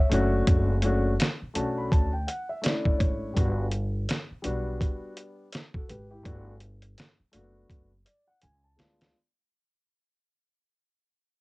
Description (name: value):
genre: hip hop, jazz-hop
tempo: 83 BPM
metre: 4/4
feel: swing 61% on 16ths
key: unclear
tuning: A4 = 440 Hz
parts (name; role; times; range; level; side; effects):
- dark grand piano; accompaniment; 0.0-9.2 s; G3 to B5; -30 LUFS; left 2 dB; cassette tape
- upright bass; bass; 0.1-9.1 s; F#1 to D2; -29 LUFS; equal; none
- dusty soul sampler-style drum kit; drums; 0.1-9.1 s; hi-hat, kick drum, snare drum; -25 LUFS; equal; cassette tape
room: little or no reverb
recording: home recording on cassette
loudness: -24 LUFS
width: side -23 dB against mid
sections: 0.0-9.1 A section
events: fade-out 0.0-9.1; grand piano fill 1.2-3.4, 7.7-9.1; drum fill 7.7-9.1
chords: 0.1 Bm9/F#; 3.4 Gmaj7; 6.3 Gmaj9; 8.4 C#7b9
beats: | 0.47 1.19 1.92 2.64 | 3.36 4.08 4.81 5.53 | 6.25 6.98 7.70 8.42